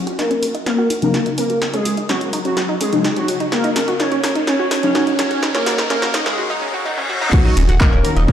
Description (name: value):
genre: melodic techno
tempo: 126 BPM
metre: 4/4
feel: straight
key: Eb minor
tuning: A4 = 440 Hz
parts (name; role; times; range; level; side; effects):
- riser and reverse cymbal; sound effects; 1.1-7.3 s; none; -28 LUFS; left 2 dB; none
- analog pluck; arpeggios; 0.1-8.3 s; Db4 to Bb5; -22 LUFS; right 1 dB; chorus, sidechain pumping, digital delay
- punchy analog drum machine; drums; 0.1-8.3 s; crash cymbal, handclaps, hi-hat, snare drum, toms; -23 LUFS; equal; sidechain pumping on hats, high-pass filter on hats, high-pass filter on snare, sidechain pumping on toms, high-pass filter on toms, sidechain pumping on cymbals, high-pass filter on cymbals
- resonant sweep polysynth; melody; 0.2-8.3 s; Gb3 to Db5; -20 LUFS; equal; chorus, dub echo
- synth brass stab; stabs; 1.0-6.4 s; Db3 to Eb4; -23 LUFS; left 2 dB; chorus, phaser, cassette tape, sidechain pumping, digital delay
- analog drone; drone; 7.8-8.3 s; Eb3 to Db4; -27 LUFS; left 2 dB; chorus, sidechain pumping
- electronic kick drum; drums; 7.3-8.3 s; none; -13 LUFS; equal; none
- round analog bass; bass; 7.6-8.3 s; Eb1; -14 LUFS; equal; sidechain pumping
room: moderate lush hall reverb, RT60 2.0 s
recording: played on a big sound system in a bare room, stone room reverb, high-pass filter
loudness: -15 LUFS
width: side -10 dB against mid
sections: 0.0-7.3 A section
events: build-up 0.0-7.3; drum fill 0.0-6.4, 6.9-7.3; filter sweep on synth arpeggio sound 0.0-7.3; filter sweep on analog polysynth 0.0-7.3; filter sweep on synth stab 0.0-7.3; filter sweep 0.0-7.3; riser 1.1-7.3; break 6.4-7.3; reverse cymbal 6.4-7.3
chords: 0.0 Ebm7